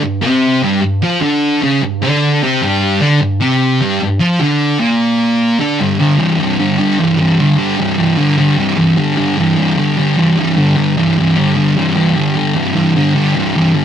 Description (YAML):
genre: rock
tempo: 151 BPM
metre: 4/4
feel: straight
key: unclear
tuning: A4 = 439 Hz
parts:
  - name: thick fuzz guitar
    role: solo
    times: 0.0-13.8 s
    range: G2 to F4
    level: -11 LUFS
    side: equal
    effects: distortion
room: light reverb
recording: rough rehearsal-room recording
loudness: -11 LUFS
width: side -9 dB against mid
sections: 0.0-5.8 A section; 5.8-13.8 B section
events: none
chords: 0.0 G5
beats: 0.22 0.62 | 1.02 1.42 1.82 2.21 | 2.61 3.01 3.41 3.81 | 4.20 4.60 5.00 5.40 | 5.79 6.19 6.59 6.99 | 7.39 7.78 8.18 8.58 | 8.98 9.38 9.77 10.17 | 10.57 10.96 11.36 11.76 | 12.16 12.56 12.95 13.35 | 13.75